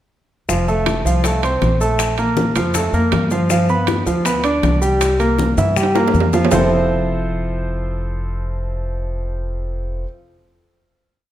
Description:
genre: latin, salsa.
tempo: 159 BPM.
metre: 4/4.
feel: straight.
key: F major.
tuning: A4 = 437 Hz.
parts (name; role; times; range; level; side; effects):
clear concert grand piano; accompaniment; 0.5-10.0 s; E3 to D6; -18 LUFS; right 1 dB; none.
upright bass; bass; 0.5-10.0 s; F1 to G2; -21 LUFS; equal; none.
bongos; percussion; 0.5-6.6 s; none; -26 LUFS; left 7 dB; none.
congas; percussion; 0.5-6.6 s; none; -26 LUFS; left 1 dB; none.
maracas; percussion; 0.5-6.6 s; none; -31 LUFS; left 7 dB; none.
timbales; percussion; 0.9-6.6 s; none; -25 LUFS; right 6 dB; none.
room: wet recital hall reverb, RT60 1.4 s.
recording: none.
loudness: -15 LUFS.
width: side -12 dB against mid.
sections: 0.5-6.5 verse; 6.5-9.5 final chord.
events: drum fill 5.6-6.5.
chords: 0.5 F; 2.0 Bb5; 3.5 G7; 5.0 C7; 6.5 Fmaj7.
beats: | 0.49 0.86 1.24 1.62 | 1.99 2.37 2.75 3.12 | 3.50 3.88 4.25 4.63 | 5.01 5.39 5.77 6.14 | 6.52 6.90 7.28 7.66 | 8.03 8.41 8.79 9.16.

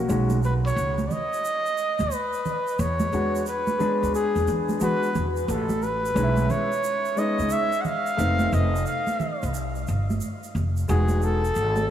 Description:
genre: hip hop, jazz-hop.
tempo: 89 BPM.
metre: 4/4.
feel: swing 65% on 16ths.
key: unclear.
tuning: A4 = 441 Hz.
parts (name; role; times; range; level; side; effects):
dark grand piano; accompaniment; 0.0-11.4 s; G#3 to G#4; -28 LUFS; left 3 dB; none.
upright bass; bass; 0.0-11.9 s; E1 to E3; -25 LUFS; right 1 dB; none.
egg shaker and congas; percussion; 0.1-11.9 s; none; -32 LUFS; right 3 dB; none.
breathy trumpet; melody; 0.4-11.9 s; G#4 to F#5; -26 LUFS; equal; diffuse ambient delay.
room: moderate huge ambient reverb, RT60 4.1 s.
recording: dreamy mix soaked in reverb, small room ambience.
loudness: -22 LUFS.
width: side -10 dB against mid.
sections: 0.0-11.9 A section.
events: none.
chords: 0.1 B69; 2.8 E9; 5.5 Amaj7; 8.2 F7#11; 10.9 Emaj9.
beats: | 0.09 0.77 1.44 2.12 | 2.79 3.46 4.14 4.81 | 5.49 6.16 6.83 7.51 | 8.18 8.86 9.53 10.21 | 10.88 11.55.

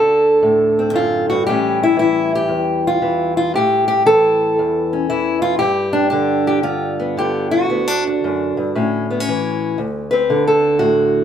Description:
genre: acoustic country blues, solo or duo.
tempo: 116 BPM.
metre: 4/4.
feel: swing 65% on 8ths.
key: unclear.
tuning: A4 = 440 Hz.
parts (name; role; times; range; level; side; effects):
fingerpicked steel-string acoustic guitar; solo; 0.0-11.2 s; D2 to B4; -14 LUFS; equal; none.
room: moderate spring reverb, RT60 2.4 s.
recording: none.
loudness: -14 LUFS.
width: side -9 dB against mid.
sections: 0.0-9.8 A section; 9.8-11.2 B section.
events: steel-string acoustic guitar solo 9.8-11.2.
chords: 0.0 D7; 1.5 A7; 5.6 G7; 7.7 D; 8.7 A; 9.8 D7.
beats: 0.43 0.95 | 1.47 1.99 2.51 3.03 | 3.55 4.07 4.58 5.10 | 5.62 6.14 6.66 7.18 | 7.70 8.22 8.74 9.25 | 9.77 10.29 10.81.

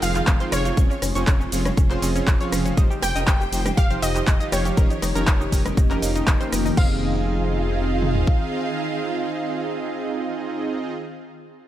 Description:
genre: progressive house.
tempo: 120 BPM.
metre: 4/4.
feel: straight.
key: F minor.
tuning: A4 = 440 Hz.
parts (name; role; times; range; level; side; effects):
wide unison pluck; melody; 0.0-10.9 s; Db5 to G5; -30 LUFS; right 1 dB; tape echo.
warm studio violin section; second line; 0.0-10.9 s; Db5 to G5; -33 LUFS; right 1 dB; sidechain pumping, tape echo.
evolving wavetable pad; sustained chords; 0.0-10.9 s; Db3 to C5; -31 LUFS; left 2 dB; ensemble chorus, built-in reverb, phaser, sidechain pumping.
analog pluck; arpeggios; 0.0-10.9 s; Db4 to Eb5; -30 LUFS; left 1 dB; chorus, cassette tape, sidechain pumping, tape echo.
soft supersaw; stabs; 0.0-10.9 s; F3 to G5; -27 LUFS; right 3 dB; vintage 12-bit sampler grit, sidechain pumping, tape echo.
dark detuned saw bass; bass; 0.0-8.2 s; F1; -26 LUFS; equal; sidechain pumping.
deep house drum kit; drums; 0.0-6.9 s; crash cymbal, handclaps, hi-hat, ride cymbal, rim click, shaker; -28 LUFS; equal; overdrive, sidechain pumping on hats, sidechain pumping on perc, sidechain pumping on cymbals.
house drum kit; drums; 0.3-8.4 s; kick drum, toms; -19 LUFS; equal; none.
congas; percussion; 0.8-5.7 s; none; -34 LUFS; right 1 dB; none.
room: digital ambience.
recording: none.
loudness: -19 LUFS.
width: side -12 dB against mid.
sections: 0.0-6.8 A section; 6.8-10.8 B section.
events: drop 0.0-6.8.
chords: 0.0 Fm7; 0.8 Dbmaj7/F; 2.8 Cm/F; 4.8 Eb7/F; 6.8 Fm7.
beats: 0.27 | 0.77 1.27 1.77 2.27 | 2.77 3.27 3.77 4.27 | 4.77 5.27 5.77 6.27 | 6.77 7.27 7.77 8.27 | 8.77 9.27 9.77 10.27.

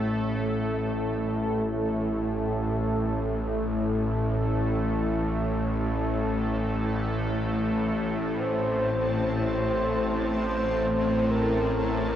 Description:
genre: dark ambient drone.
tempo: free time.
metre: none.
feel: none.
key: unclear.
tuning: A4 = 439 Hz.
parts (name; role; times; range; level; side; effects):
dark detuned synth bell; arpeggios; 0.0-8.4 s; none; barely audible; none; none.
bowed-like drone; drone; 0.0-12.2 s; A1 to A2; -26 LUFS; left 1 dB; built-in reverb.
bubbling stepped-filter texture; texture; 0.0-12.2 s; A3 to A5; -31 LUFS; right 1 dB; chorus, built-in reverb.
mellow horn-like synth lead; melody; 8.4-12.2 s; Bb4 to C5; -28 LUFS; equal; chorus, tape echo.
room: wet huge ambient reverb, RT60 7.5 s.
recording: worn, warbling old tape, cassette tape, warbly pitch drift.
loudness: -24 LUFS.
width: side -10 dB against mid.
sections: 0.0-12.2 A section.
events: none.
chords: 0.0 A5; 8.3 F (rootless).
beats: free time.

